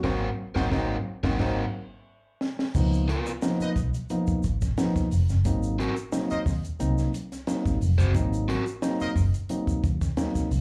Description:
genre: funk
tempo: 89 BPM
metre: 4/4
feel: straight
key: Ab mixolydian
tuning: A4 = 442 Hz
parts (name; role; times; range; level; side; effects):
- warm horn section; second line; 0.0-9.1 s; Eb4 to Eb5; -38 LUFS; equal; slapback echo
- crunchy overdriven guitar; accompaniment; 0.0-8.6 s; Cb4 to Gb5; -33 LUFS; equal; slapback echo
- tine electric piano; stabs; 0.0-10.5 s; F3 to Gb4; -31 LUFS; equal; slapback echo
- vintage muted picked electric bass; bass; 0.0-10.6 s; F1 to Eb2; -28 LUFS; equal; none
- compact cocktail drum kit; drums; 0.0-10.6 s; crash cymbal, hi-hat, kick drum, snare drum; -32 LUFS; equal; none
- egg shaker; percussion; 2.7-10.6 s; none; -49 LUFS; equal; none
room: little or no reverb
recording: live gig heard through the venue's PA, club reverb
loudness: -26 LUFS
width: mono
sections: 0.0-2.7 A section; 2.7-10.6 B section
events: band accent 0.0-2.7; drum fill 2.1-2.7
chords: 0.0 Ab9; 2.7 Db13; 5.4 Ab9

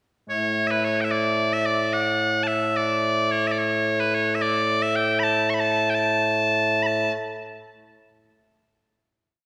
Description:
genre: scottish traditional, Scottish pipe music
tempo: 73 BPM (dotted quarters)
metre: 6/8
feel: straight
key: A major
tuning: A4 = 438 Hz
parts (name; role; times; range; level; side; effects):
- loud bright bagpipes; solo; 0.3-7.1 s; A2 to C#6; -23 LUFS; equal; none
room: wet scoring stage reverb, RT60 2.0 s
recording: recorded in a church or concert hall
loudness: -23 LUFS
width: mono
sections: 0.3-6.9 A section; 6.9-8.5 final note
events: none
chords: none

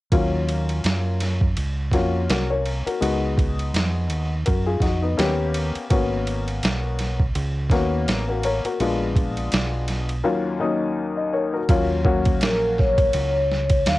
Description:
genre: hip hop, jazz-hop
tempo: 83 BPM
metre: 4/4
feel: swing 57% on 16ths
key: Eb minor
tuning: A4 = 438 Hz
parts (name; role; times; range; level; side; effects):
- warm upright piano; accompaniment; 0.1-13.4 s; Eb2 to Eb5; -24 LUFS; left 3 dB; cassette tape
- deep dub fingered electric bass; bass; 0.1-14.0 s; Ab1 to Gb2; -24 LUFS; right 1 dB; none
- boom bap sampler-style drum kit; drums; 0.1-14.0 s; hi-hat, kick drum, ride cymbal, snare drum; -24 LUFS; right 1 dB; cassette tape
- vibraphone with soft mallets; melody; 12.4-14.0 s; Bb4 to F5; -21 LUFS; left 1 dB; cassette tape
room: light reverb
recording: home recording on cassette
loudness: -20 LUFS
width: side -17 dB against mid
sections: 0.1-11.7 A section; 11.7-14.0 B section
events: none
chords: 0.1 Ebm9; 3.0 Db9sus4; 5.2 Eb7b13; 5.9 Abm11; 8.8 Bb7b9; 10.2 Ebm9

